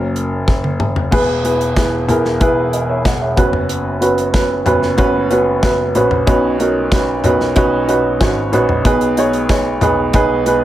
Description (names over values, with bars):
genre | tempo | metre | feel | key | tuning
piano-driven pop | 93 BPM | 4/4 | straight | unclear | A4 = 440 Hz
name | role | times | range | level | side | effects
dark upright piano | accompaniment | 0.0-10.6 s | B2 to F#5 | -14 LUFS | right 1 dB | plate reverb
clear grand piano | bass | 0.0-10.6 s | E1 to B1 | -21 LUFS | left 1 dB | none
modern studio drum kit | drums | 0.2-10.6 s | crash cymbal, hi-hat, kick drum, snare drum, toms | -18 LUFS | equal | none
room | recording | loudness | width
moderate studio reverb, RT60 0.7 s | none | -13 LUFS | side -13 dB against mid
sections
0.0-1.1 A section; 1.1-10.6 B section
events
upright piano solo 0.0-1.1; drum fill 0.5-1.1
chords
0.0 F#; 1.1 E; 3.4 F#sus4; 6.3 Badd9; 8.9 G#m/B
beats
0.48 | 1.12 1.77 2.41 3.06 | 3.70 4.34 4.99 5.63 | 6.28 6.92 7.56 8.21 | 8.85 9.49 10.14